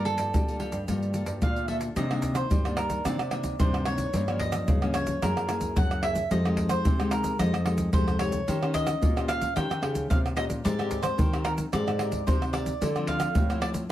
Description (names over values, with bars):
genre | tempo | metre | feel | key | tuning
samba and choro | 111 BPM | 4/4 | straight | C minor | A4 = 441 Hz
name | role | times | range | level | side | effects
cavaquinho | melody | 0.0-13.7 s | G4 to G5 | -32 LUFS | right 1 dB | none
nylon-string guitar | accompaniment | 0.0-13.9 s | G2 to C5 | -32 LUFS | left 2 dB | none
nylon-string guitar | bass | 0.0-13.9 s | F2 to G3 | -31 LUFS | equal | none
pandeiro, egg shaker, surdo and tamborim | percussion | 0.1-13.9 s | none | -28 LUFS | equal | none
room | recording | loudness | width
moderate studio reverb, RT60 0.7 s | lossy compression artefacts | -24 LUFS | side -13 dB against mid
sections
0.0-2.0 A section; 2.0-13.9 B section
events
none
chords
0.0 Gm9; 2.0 Cm9; 4.1 Gm7b5; 5.2 F#9; 6.3 Fm9; 8.5 Eb6; 10.6 Abmaj9; 12.8 Dm9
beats
0.34 0.88 1.42 | 1.97 2.51 3.05 3.59 | 4.13 4.68 5.22 5.76 | 6.30 6.85 7.39 7.93 | 8.47 9.02 9.56 10.10 | 10.64 11.19 11.73 12.27 | 12.81 13.35 13.89